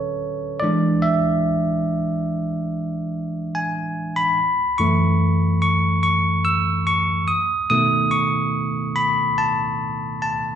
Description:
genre	pop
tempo	72 BPM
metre	4/4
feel	straight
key	F# minor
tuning	A4 = 442 Hz
part	bell-like tine electric piano	solo	0.0-10.6 s	F#2 to E6	-18 LUFS	equal	none
room	wet large studio reverb, RT60 1.4 s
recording	band playing live in one room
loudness	-18 LUFS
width	side -9 dB against mid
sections	0.0-4.4 A section; 4.4-10.6 B section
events	tine electric piano solo 0.0-4.4, 4.4-10.6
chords	0.0 Dmaj7; 0.6 E7; 4.4 F#m7; 7.3 B7

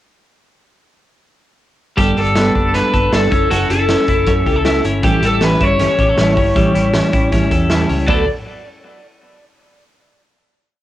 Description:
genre	jangly indie pop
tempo	157 BPM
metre	4/4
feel	straight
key	D major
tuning	A4 = 441 Hz
part	lead guitar through a small cranked amp	melody	2.0-8.3 s	F#4 to D5	-18 LUFS	left 1 dB	overdrive
part	fingerpicked steel-string acoustic guitar	accompaniment	2.0-8.2 s	A2 to A4	-19 LUFS	right 2 dB	cassette tape
part	twelve-string electric guitar	arpeggios	2.0-8.2 s	F#3 to A4	-19 LUFS	left 2 dB	cassette tape
part	vintage muted fingered electric bass	bass	2.0-8.3 s	F#1 to A2	-20 LUFS	equal	none
part	raw garage drum kit	drums	2.0-8.2 s	crash cymbal, hi-hat, kick drum, snare drum	-19 LUFS	equal	none
room	light reverb, small room ambience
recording	home recording on cassette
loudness	-12 LUFS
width	side -13 dB against mid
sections	2.0-8.1 verse; 8.1-9.6 final chord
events	none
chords	2.0 Gadd9; 3.3 F#m7; 5.0 A7; 8.1 D6

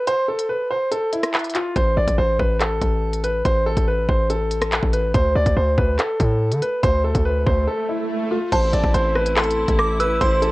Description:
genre	hip hop, drill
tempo	142 BPM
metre	4/4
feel	half-time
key	A minor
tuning	A4 = 440 Hz
part	warm concert grand piano	melody	0.0-10.5 s	E4 to D5	-21 LUFS	equal	low-pass filter
part	drill drum kit	drums	0.1-10.5 s	crash cymbal, handclaps, hi-hat, kick drum, rim click	-22 LUFS	equal	vintage 12-bit sampler grit, cassette tape
part	hard-hitting 808-style bass	bass	1.8-10.5 s	A1 to D3	-21 LUFS	equal	none
part	swell	sound effects	6.8-8.5 s	none	-29 LUFS	right 3 dB	none
part	delicate synth tine bell	second line	8.5-10.5 s	A5 to E6	-25 LUFS	equal	chorus, phaser, cassette tape, analog delay
part	clear symphonic string section	sustained chords	8.5-10.5 s	A3 to E4	-29 LUFS	equal	cassette tape
room	light reverb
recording	home recording on cassette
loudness	-17 LUFS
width	side -19 dB against mid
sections	0.0-8.5 A section; 8.5-10.5 B section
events	break 0.0-1.8, 7.7-8.5; swell 6.8-8.5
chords	0.0 N.C.; 1.8 Amadd9; 5.1 D5; 8.5 Am

